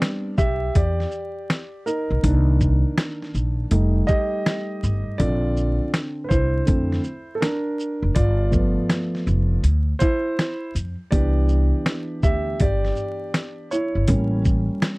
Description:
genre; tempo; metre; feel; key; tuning
hip hop, jazz-hop; 81 BPM; 4/4; swing 65% on 16ths; unclear; A4 = 443 Hz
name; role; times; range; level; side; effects
dark grand piano; accompaniment; 0.0-15.0 s; D3 to E5; -24 LUFS; right 1 dB; none
dusty soul sampler-style drum kit; drums; 0.0-15.0 s; hi-hat, kick drum, shaker, snare drum; -22 LUFS; equal; none
upright bass; bass; 0.4-14.7 s; F1 to F2; -20 LUFS; equal; none
room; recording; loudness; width
little or no reverb; dry, close 1970s-style studio recording, vinyl crackle; -19 LUFS; side -24 dB against mid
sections
0.0-15.0 A section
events
grand piano solo 0.0-15.0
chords
0.0 Am11 (rootless); 2.2 Cm7; 3.7 F7; 5.2 Bbmaj9; 8.2 G9; 11.1 Cmaj9; 14.1 A7b9

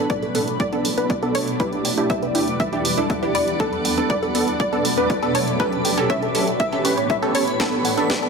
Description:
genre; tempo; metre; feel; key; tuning
progressive house; 120 BPM; 4/4; straight; B minor; A4 = 441 Hz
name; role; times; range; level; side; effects
wide unison pluck; melody; 0.0-8.3 s; A4 to E5; -27 LUFS; equal; sidechain pumping, ping-pong delay
shimmering ambient pad; sustained chords; 0.0-8.3 s; E2 to F#5; -25 LUFS; left 1 dB; chorus, built-in reverb, phaser, vintage 12-bit sampler grit, sidechain pumping
supersaw stab; stabs; 0.0-8.3 s; B3 to B4; -23 LUFS; right 2 dB; sidechain pumping, low-pass filter, tape echo
backwards swelling texture; texture; 0.8-8.3 s; B4 to B5; -32 LUFS; right 1 dB; built-in reverb, sidechain pumping
tight sequenced synth; arpeggios; 0.1-8.3 s; A4 to D6; -28 LUFS; left 2 dB; chorus, sidechain pumping, tape echo
electronic kick drum; drums; 0.1-8.2 s; none; -26 LUFS; left 1 dB; high-pass filter on kick
house drum kit; drums; 0.1-8.3 s; hi-hat, snare drum; -27 LUFS; right 1 dB; high-pass filter on snare, high-pass filter on hats, high-pass filter on room
riser; sound effects; 7.6-8.3 s; none; barely audible; none; none
room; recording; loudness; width
moderate lush hall reverb, RT60 1.9 s; none; -18 LUFS; side -5 dB against mid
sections
0.0-8.3 A section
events
build-up 0.0-8.3; filter sweep on synth arpeggio sound 0.0-8.3; filter sweep on supersaw synth 0.0-8.3; drum fill 7.6-8.3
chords
0.0 Bm7; 1.6 Em7; 3.6 Bm7; 5.6 A7; 7.6 Bm7

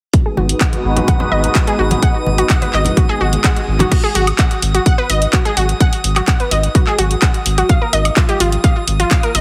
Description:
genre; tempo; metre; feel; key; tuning
progressive house; 127 BPM; 4/4; straight; G# minor; A4 = 440 Hz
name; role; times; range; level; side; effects
filtered supersaw swell; sustained chords; 0.1-3.9 s; G#3 to B4; -24 LUFS; equal; sidechain pumping
unison pluck; arpeggios; 0.1-9.4 s; E#4 to F#5; -21 LUFS; equal; sidechain pumping, digital delay
electronic kick drum; drums; 0.1-9.2 s; none; -16 LUFS; equal; none
house drum kit; drums; 0.1-9.4 s; crash cymbal, handclaps, hi-hat, woodblock; -23 LUFS; equal; none
drifting glass-harmonics texture; texture; 0.5-9.4 s; D#6; -31 LUFS; equal; chorus, built-in reverb, sidechain pumping
round analog bass; bass; 0.4-9.4 s; G#1; -20 LUFS; equal; sidechain pumping
congas; percussion; 0.4-3.9 s; none; -24 LUFS; equal; sidechain pumping on perc
swell; sound effects; 3.2-3.9 s; none; -32 LUFS; equal; none
room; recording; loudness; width
light reverb; heavily compressed radio sound, multiband compression; -15 LUFS; mono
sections
0.1-3.9 A section; 3.9-9.4 B section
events
filter sweep on synth pluck 0.1-3.9; swell 3.2-3.9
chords
0.1 G#m7; 3.9 G#7(no3); 7.7 D#sus2/G#

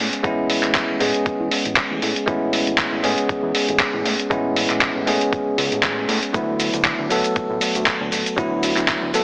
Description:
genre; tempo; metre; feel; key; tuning
nu-disco, nu disco; 118 BPM; 4/4; swing 55% on 16ths; A major; A4 = 440 Hz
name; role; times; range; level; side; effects
bell-like tine electric piano; accompaniment; 0.0-9.2 s; F#3 to A4; -21 LUFS; equal; digital delay
fat analog bass; bass; 0.0-9.2 s; D1 to A2; -28 LUFS; equal; none
dusty soul sampler-style drum kit; drums; 0.1-9.2 s; cabasa, handclaps, hi-hat; -20 LUFS; equal; overdrive, studio reverb
electronic kick drum; drums; 0.2-9.0 s; none; -28 LUFS; equal; overdrive, studio reverb
room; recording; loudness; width
moderate plate reverb, RT60 2.3 s; heavily compressed radio sound, multiband compression, AM radio sound; -17 LUFS; side -32 dB against mid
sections
0.0-9.2 A section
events
none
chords
0.0 Amaj7; 6.3 D6

